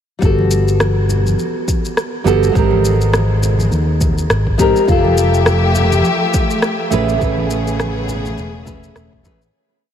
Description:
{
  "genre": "sunset chillout",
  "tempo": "103 BPM",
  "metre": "4/4",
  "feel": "swing 58% on 16ths",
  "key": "unclear",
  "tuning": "A4 = 440 Hz",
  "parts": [
    { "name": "nylon-string guitar", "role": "accompaniment", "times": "0.2-9.4 s", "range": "G3 to B4", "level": "-18 LUFS", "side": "moving between left 4 dB and right 7 dB", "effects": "auto-pan, tape echo" },
    { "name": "fingered electric bass", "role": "bass", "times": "0.2-9.5 s", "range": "E1 to Ab2", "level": "-16 LUFS", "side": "equal", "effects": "none" },
    { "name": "electronic kick drum", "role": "drums", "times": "0.2-9.4 s", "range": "none", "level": "-18 LUFS", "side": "equal", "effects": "none" },
    { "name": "electronic shaker and rim click", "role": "drums", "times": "0.2-9.5 s", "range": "none", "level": "-23 LUFS", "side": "equal", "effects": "none" },
    { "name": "congas", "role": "percussion", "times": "0.4-9.4 s", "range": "none", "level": "-26 LUFS", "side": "right 1 dB", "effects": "none" },
    { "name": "clear studio string section", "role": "sustained chords", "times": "4.9-9.5 s", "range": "C#3 to E5", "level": "-19 LUFS", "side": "left 3 dB", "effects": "none" }
  ],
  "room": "moderate huge ambient reverb, RT60 8.3 s",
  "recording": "dreamy mix soaked in reverb",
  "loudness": "-13 LUFS",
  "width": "side -9 dB against mid",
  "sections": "0.2-9.5 groove",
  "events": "fade-out 6.4-9.5",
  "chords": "0.2 Gmaj9; 2.6 Abmaj9; 4.9 Fmaj9; 6.9 Amaj9"
}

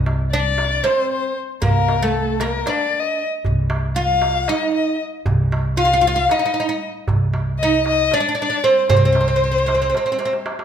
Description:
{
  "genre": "Turkish makam ensemble",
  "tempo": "231 BPM (eighths)",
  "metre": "7/8",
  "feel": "straight",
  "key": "C makam huseyni",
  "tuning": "A4 = 445 Hz",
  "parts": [
    { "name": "upright bass", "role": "bass", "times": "0.0-9.9 s", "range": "C2", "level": "-22 LUFS", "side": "equal", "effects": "none" },
    { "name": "darbuka", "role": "percussion", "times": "0.1-10.6 s", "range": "none", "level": "-23 LUFS", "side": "right 2 dB", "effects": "none" },
    { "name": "oud", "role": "melody", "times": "0.3-10.3 s", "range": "A3-30c to F4", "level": "-19 LUFS", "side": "right 1 dB", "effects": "none" },
    { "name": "dark violin", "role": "second line", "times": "0.3-10.4 s", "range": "A4-31c to F5", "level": "-22 LUFS", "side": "left 4 dB", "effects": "none" }
  ],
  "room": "moderate recital hall reverb, RT60 1.4 s",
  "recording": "minimal, uncompressed stereo recording",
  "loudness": "-16 LUFS",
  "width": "side -8 dB against mid",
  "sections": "0.0-10.6 A section",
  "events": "drum fill 10.2-10.6",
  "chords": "none"
}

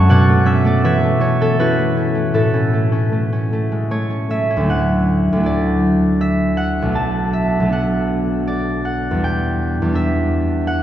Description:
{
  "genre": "classical, solo harp piece",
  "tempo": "79 BPM",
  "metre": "3/4",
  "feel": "uneven beats, rubato",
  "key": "A major, D major from 4.7 s",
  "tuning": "A4 = 440 Hz",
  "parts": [
    { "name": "concert harp", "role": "solo", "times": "0.0-10.8 s", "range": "B1 to C#6", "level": "-15 LUFS", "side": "equal", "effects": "none" }
  ],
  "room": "wet cathedral reverb, RT60 4.9 s",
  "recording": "heard from further back in the room",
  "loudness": "-15 LUFS",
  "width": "side -11 dB against mid",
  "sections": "0.0-4.7 A section; 4.7-10.8 B section",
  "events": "none",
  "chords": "0.1 Bm11; 2.4 A6; 4.7 Dadd9; 7.0 Bm7; 9.2 Em7"
}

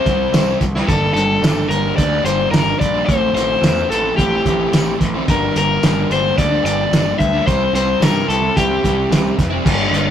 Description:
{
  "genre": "indie rock",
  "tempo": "109 BPM",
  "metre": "4/4",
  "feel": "straight",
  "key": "unclear",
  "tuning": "A4 = 443 Hz",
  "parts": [
    { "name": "overdriven semi-hollow guitar", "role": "melody", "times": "0.0-9.3 s", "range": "G4 to E5", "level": "-18 LUFS", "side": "left 3 dB", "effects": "none" },
    { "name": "fuzz guitar", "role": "riff", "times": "0.0-10.1 s", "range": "G2 to E4", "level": "-20 LUFS", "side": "right 1 dB", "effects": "distortion" },
    { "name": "growling picked electric bass", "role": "bass", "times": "0.1-10.1 s", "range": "F1 to G2", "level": "-22 LUFS", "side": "equal", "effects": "overdrive" },
    { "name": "cloth-damped thuddy drum kit", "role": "drums", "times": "0.1-10.1 s", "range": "crash cymbal, hi-hat, kick drum, snare drum, tambourine", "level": "-18 LUFS", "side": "right 1 dB", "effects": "none" }
  ],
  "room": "moderate studio reverb, RT60 0.6 s",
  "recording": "rough rehearsal-room recording",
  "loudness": "-14 LUFS",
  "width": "side -9 dB against mid",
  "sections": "0.0-9.7 A section",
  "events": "none",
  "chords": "0.0 C; 0.9 Gmadd9; 3.1 Am; 5.3 Gm; 7.5 C"
}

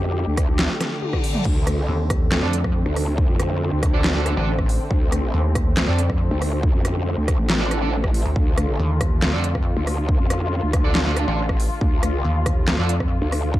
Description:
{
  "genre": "heavy wobble dubstep",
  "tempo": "139 BPM",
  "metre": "4/4",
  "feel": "half-time",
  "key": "D phrygian",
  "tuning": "A4 = 441 Hz",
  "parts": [
    { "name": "rich studio string section", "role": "sustained chords", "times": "0.0-13.6 s", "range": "D3 to G4", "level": "-28 LUFS", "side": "left 1 dB", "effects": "sidechain pumping, low-pass filter" },
    { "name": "growl bass", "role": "bass", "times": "0.0-13.6 s", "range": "A1 to F2", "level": "-22 LUFS", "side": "equal", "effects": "chorus, overdrive" },
    { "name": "dubstep drum kit", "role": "drums", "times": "0.4-13.4 s", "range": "crash cymbal, handclaps, hi-hat, rim click, snare drum, toms", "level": "-25 LUFS", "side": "equal", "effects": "none" },
    { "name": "electronic kick drum", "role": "drums", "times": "0.4-13.6 s", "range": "none", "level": "-21 LUFS", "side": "equal", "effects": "none" },
    { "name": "reverse cymbal", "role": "sound effects", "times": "0.8-1.5 s", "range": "none", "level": "-32 LUFS", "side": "left 5 dB", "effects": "none" },
    { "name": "pulsing pluck wobble bass", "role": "bass", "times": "1.9-13.2 s", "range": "A1 to F2", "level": "-21 LUFS", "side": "equal", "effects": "chorus, overdrive" },
    { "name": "fuzz guitar", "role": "stabs", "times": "2.4-12.9 s", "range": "D4 to D5", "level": "-30 LUFS", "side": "right 5 dB", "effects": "distortion, tape echo" }
  ],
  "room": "little or no reverb",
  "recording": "dark, warm production",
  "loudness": "-18 LUFS",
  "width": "side -15 dB against mid",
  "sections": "0.0-13.6 A section",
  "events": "reverse cymbal 0.8-1.5; drum fill 1.0-1.5",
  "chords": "0.0 D5"
}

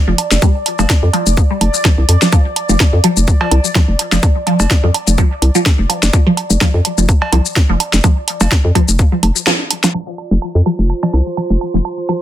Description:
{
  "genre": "minimal techno",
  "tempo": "126 BPM",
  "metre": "4/4",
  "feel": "swing 55% on 16ths",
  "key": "unclear",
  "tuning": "A4 = 442 Hz",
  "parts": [
    { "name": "bubbling stepped-filter texture", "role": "texture", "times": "0.0-10.0 s", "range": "D5", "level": "-25 LUFS", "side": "equal", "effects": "chorus, built-in reverb, sidechain pumping" },
    { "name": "resonant blip pluck", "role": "riff", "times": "0.1-12.2 s", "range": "F3 to G3", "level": "-19 LUFS", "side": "equal", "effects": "phaser, wide subtle chorus, cassette tape, sidechain pumping, ping-pong delay" },
    { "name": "hollow knocking FM bass", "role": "bass", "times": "0.1-11.8 s", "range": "F1 to F2", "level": "-12 LUFS", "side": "equal", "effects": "sidechain pumping" },
    { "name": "garage drum kit", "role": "drums", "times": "0.2-9.9 s", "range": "hi-hat, shaker, snare drum", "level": "-17 LUFS", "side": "left 1 dB", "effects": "overdrive, low-pass filter on perc, low-pass filter on hats, low-pass filter on snare" },
    { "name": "woodblock and cowbell", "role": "percussion", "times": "0.2-12.2 s", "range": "none", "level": "-24 LUFS", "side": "right 8 dB", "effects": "tape echo" },
    { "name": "electronic kick drum", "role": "drums", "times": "0.4-9.1 s", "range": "none", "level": "-12 LUFS", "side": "equal", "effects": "overdrive" },
    { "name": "warbly tape-like pad", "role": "texture", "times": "9.9-12.2 s", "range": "F4 to C6", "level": "-22 LUFS", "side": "right 4 dB", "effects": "chorus, built-in reverb, sidechain pumping" }
  ],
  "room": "light reverb",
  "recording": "dense, heavily limited modern master, low-pass filter",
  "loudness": "-11 LUFS",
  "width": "side -12 dB against mid",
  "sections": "0.0-9.9 A section; 9.9-12.2 B section",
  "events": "band accent 9.5; filter sweep on synth arpeggio sound 9.9-12.2; filter sweep 9.9-12.2",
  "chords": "0.0 F5"
}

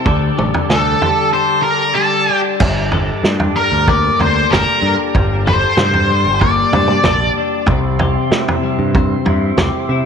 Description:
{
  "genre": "psychedelic rock",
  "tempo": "95 BPM",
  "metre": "4/4",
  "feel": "straight",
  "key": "G dorian",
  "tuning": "A4 = 440 Hz",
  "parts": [
    { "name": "tonewheel organ", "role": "sustained chords", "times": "0.0-10.1 s", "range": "G4 to D6", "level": "-25 LUFS", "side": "right 12 dB", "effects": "slow rotary speaker, overdrive" },
    { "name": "twelve-string electric guitar", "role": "riff", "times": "0.0-10.1 s", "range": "G2 to A4", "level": "-20 LUFS", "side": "left 10 dB", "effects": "flanger" },
    { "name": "growling picked electric bass", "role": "bass", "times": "0.1-10.0 s", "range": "G1 to C3", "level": "-19 LUFS", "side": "right 1 dB", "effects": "overdrive" },
    { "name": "vintage drum kit", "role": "drums", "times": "0.1-9.7 s", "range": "crash cymbal, kick drum, snare drum, toms", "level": "-18 LUFS", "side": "right 1 dB", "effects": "none" },
    { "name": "octave-fuzz lead guitar", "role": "melody", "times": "0.7-7.3 s", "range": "A4 to D5", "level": "-16 LUFS", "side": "equal", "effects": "wah, distortion, tape echo" }
  ],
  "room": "moderate echo chamber reverb, RT60 2.2 s",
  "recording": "1960s-style stereo with parts hard left and right",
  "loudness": "-12 LUFS",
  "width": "side -7 dB against mid",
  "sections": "0.0-2.6 A section; 2.6-10.1 B section",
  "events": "none",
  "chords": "0.1 Dsus4; 2.6 Gmadd9; 7.7 C"
}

